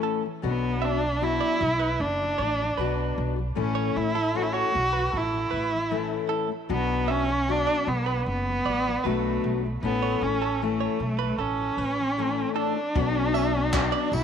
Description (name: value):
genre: acoustic pop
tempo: 77 BPM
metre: 4/4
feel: straight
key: B minor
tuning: A4 = 442 Hz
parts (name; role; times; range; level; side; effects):
- fingerpicked steel-string acoustic guitar; accompaniment; 0.0-14.2 s; A2 to F#4; -30 LUFS; left 14 dB; none
- direct-recorded clean electric guitar; arpeggios; 0.0-14.1 s; A4 to E5; -33 LUFS; right 12 dB; none
- upright bass; bass; 0.4-14.2 s; F#1 to B1; -30 LUFS; right 1 dB; none
- warm cello; melody; 0.5-14.2 s; A3 to F#4; -26 LUFS; right 1 dB; none
- jazz brush drum kit; drums; 13.0-14.2 s; handclaps, kick drum, tambourine; -29 LUFS; right 1 dB; none
room: light reverb, small room ambience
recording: 1960s-style stereo with parts hard left and right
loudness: -23 LUFS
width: side -8 dB against mid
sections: 0.0-13.0 A section; 13.0-14.2 B section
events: none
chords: 0.4 Bm; 3.6 A; 6.7 Bm; 9.8 A; 13.0 Bm